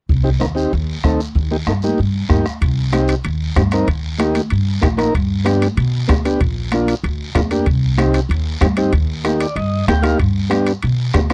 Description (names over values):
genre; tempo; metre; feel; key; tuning
latin, cumbia; 190 BPM; 4/4; straight; C minor; A4 = 441 Hz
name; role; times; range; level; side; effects
upright bass; bass; 0.1-11.3 s; Bb1 to B2; -21 LUFS; equal; none
bombo; percussion; 0.1-11.3 s; none; -22 LUFS; equal; none
congas; percussion; 0.1-11.3 s; none; -29 LUFS; equal; none
guiro; percussion; 0.1-11.3 s; none; -36 LUFS; equal; none
overdriven combo organ; accompaniment; 0.2-11.3 s; Bb3 to G5; -20 LUFS; equal; none
timbales; percussion; 2.6-11.3 s; none; -28 LUFS; equal; none
room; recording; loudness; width
little or no reverb; dry, close 1970s-style studio recording; -17 LUFS; mono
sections
0.1-2.6 A section; 2.6-11.3 B section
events
transistor combo organ fill 9.2-10.2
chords
0.1 Cm; 1.4 Eb; 2.6 Cm; 3.9 Eb; 5.1 G; 6.4 Bb; 7.7 Cm; 8.9 Eb; 10.2 G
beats
| 0.09 0.40 0.72 1.04 | 1.35 1.67 1.99 2.30 | 2.62 2.93 3.25 3.56 | 3.88 4.20 4.51 4.83 | 5.14 5.46 5.77 6.09 | 6.41 6.72 7.04 7.35 | 7.67 7.98 8.30 8.62 | 8.93 9.25 9.56 9.88 | 10.19 10.51 10.82 11.14